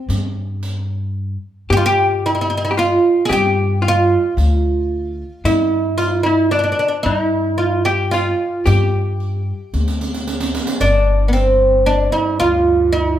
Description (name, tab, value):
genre	Turkish makam ensemble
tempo	112 BPM (eighths)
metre	10/8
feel	straight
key	G makam hicaz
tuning	A4 = 440 Hz
part	oud	melody	0.0-13.2 s	B3 to Ab4	-16 LUFS	right 2 dB	none
part	archtop guitar, miked and amplified	second line	0.0-10.2 s	D4 to G4	-21 LUFS	left 2 dB	none
part	upright bass	bass	0.1-13.2 s	G1 to G2	-19 LUFS	left 1 dB	none
part	riq	percussion	0.1-11.6 s	none	-26 LUFS	right 2 dB	none
part	warm chamber cello section	drone	10.8-13.2 s	G2	-27 LUFS	left 1 dB	none
room	light reverb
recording	band playing live in one room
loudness	-14 LUFS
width	side -11 dB against mid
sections	0.0-10.8 A section; 10.8-13.2 B section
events	drum fill 9.7-10.8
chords	none